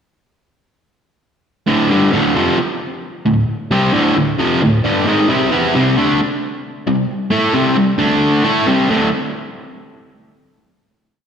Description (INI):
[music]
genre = rock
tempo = 133 BPM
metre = 4/4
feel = straight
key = unclear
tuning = A4 = 440 Hz
[part]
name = distorted electric guitar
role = solo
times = 1.7-9.1 s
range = D2 to A4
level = -13 LUFS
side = equal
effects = distortion, slapback echo
[sound]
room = wet lush hall reverb, RT60 1.9 s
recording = big arena sound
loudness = -13 LUFS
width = side -7 dB against mid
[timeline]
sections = 1.7-8.9 riff; 8.9-10.7 final chord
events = none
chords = 1.7 D5; 5.3 C5; 8.0 D5; 8.4 C5; 8.9 D5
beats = | 1.67 2.13 2.58 3.03 | 3.49 3.94 4.39 4.84 | 5.29 5.74 6.19 6.64 | 7.09 7.54 8.00 8.45 | 8.90